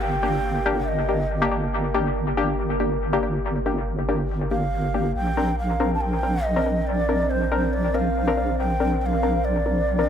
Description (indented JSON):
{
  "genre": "dubstep",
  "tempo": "140 BPM",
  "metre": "4/4",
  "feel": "swing 55% on 16ths, half-time",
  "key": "G minor",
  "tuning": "A4 = 441 Hz",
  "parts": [
    { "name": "breathy mellow low ney", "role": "melody", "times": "0.0-1.5, 4.5-10.1 s", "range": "C5 to A5", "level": "-27 LUFS", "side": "right 1 dB", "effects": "dub echo" },
    { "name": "deep dark ambient pad", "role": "sustained chords", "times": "0.0-10.1 s", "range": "Bb3 to C5", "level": "-30 LUFS", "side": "right 1 dB", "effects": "chorus, built-in reverb" },
    { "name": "deep soft wobble bass", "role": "bass", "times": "0.0-10.1 s", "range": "G1 to Bb1", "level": "-25 LUFS", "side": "right 1 dB", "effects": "chorus" },
    { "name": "downlifter", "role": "sound effects", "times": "0.0-1.7 s", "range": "none", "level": "-39 LUFS", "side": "right 1 dB", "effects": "none" },
    { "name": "filtered dub chord stab", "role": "stabs", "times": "0.2-10.1 s", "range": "Bb3 to Bb4", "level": "-26 LUFS", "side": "left 3 dB", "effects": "chorus, dub echo" }
  ],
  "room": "moderate spring reverb, RT60 1.3 s",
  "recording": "echo-heavy mix",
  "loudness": "-21 LUFS",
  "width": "side -8 dB against mid",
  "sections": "0.0-10.1 A section",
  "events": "none",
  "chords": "0.0 Gm; 5.2 Bbadd9"
}